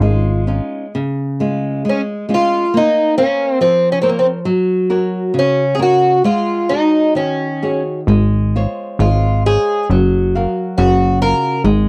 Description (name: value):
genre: fado-style ballad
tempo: 64-70 BPM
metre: 2/4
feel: rubato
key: Db major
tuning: A4 = 438 Hz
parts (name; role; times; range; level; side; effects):
- fingerpicked twelve-string acoustic guitar; melody; 0.0-11.6 s; Bb3 to Bb4; -17 LUFS; equal; none
- flamenco guitar; accompaniment; 0.0-11.9 s; Db3 to F5; -20 LUFS; equal; none
- plucky analog bass; bass; 0.0-0.6, 8.1-11.9 s; Gb1 to Ab1; -16 LUFS; equal; none
room: little or no reverb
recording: dry, close 1970s-style studio recording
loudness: -15 LUFS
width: mono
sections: 0.9-11.9 A section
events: none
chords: 0.0 Dbadd9; 0.9 Db; 2.7 Bbmadd9; 4.5 Gb; 6.2 Ab7sus4; 8.1 Dbmaj7/Ab; 9.9 Gbmaj7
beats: 0.01 | 0.94 1.85 | 2.74 3.60 | 4.46 5.34 | 6.24 7.16 | 8.08 9.00 | 9.90 10.78 | 11.64